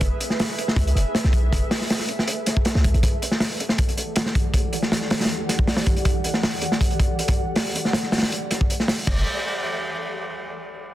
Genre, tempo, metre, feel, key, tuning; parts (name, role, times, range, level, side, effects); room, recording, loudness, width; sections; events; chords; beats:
drum and bass, jungle; 159 BPM; 4/4; straight; F# phrygian; A4 = 439 Hz
granular cloud pad; sustained chords; 0.0-9.2 s; E3 to F#5; -29 LUFS; equal; built-in reverb
warm 808-style bass; bass; 0.0-3.0, 9.1-9.2 s; F#1 to C#2; -20 LUFS; equal
crunchy breakbeat drum kit; drums; 0.0-9.2 s; crash cymbal, hi-hat, kick drum, snare drum; -21 LUFS; equal
light reverb, small room reverb; dense, heavily limited modern master; -20 LUFS; side -14 dB against mid
0.0-9.1 A section; 9.1-10.6 B section
filter sweep on ambient pad 0.0-9.1
0.0 F#m11 (rootless); 3.0 Em11; 9.1 F#m11
| 0.01 0.39 0.77 1.15 | 1.52 1.90 2.28 2.65 | 3.03 3.41 3.79 4.16 | 4.54 4.92 5.30 5.67 | 6.05 6.43 6.81 7.18 | 7.56 7.94 8.31 8.69 | 9.07